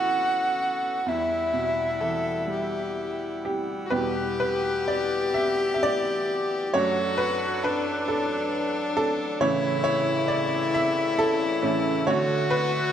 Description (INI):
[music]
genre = celtic folk, Celtic slow air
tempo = 41-45 BPM (dotted quarters)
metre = 6/8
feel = rubato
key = E dorian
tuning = A4 = 439 Hz
[part]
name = bright reedy wooden flute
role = melody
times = 0.0-3.5 s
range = E5 to F#5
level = -26 LUFS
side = equal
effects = none
[part]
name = clear fiddle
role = second line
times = 0.0-12.9 s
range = D4 to A4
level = -28 LUFS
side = left 4 dB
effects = none
[part]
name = bright upright piano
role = accompaniment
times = 0.0-12.9 s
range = E2 to E5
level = -26 LUFS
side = right 2 dB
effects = none
[part]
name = accordion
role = sustained chords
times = 0.0-12.9 s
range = A2 to F#5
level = -34 LUFS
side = left 1 dB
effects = none
[sound]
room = moderate recital hall reverb, RT60 1.6 s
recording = none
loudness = -23 LUFS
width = side -9 dB against mid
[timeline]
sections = 0.0-3.9 A section; 3.9-12.9 B section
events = upright piano solo 3.9-12.9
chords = 0.0 Aadd9; 1.1 Emadd9; 3.9 Em; 6.7 D/F#; 9.4 A; 12.1 D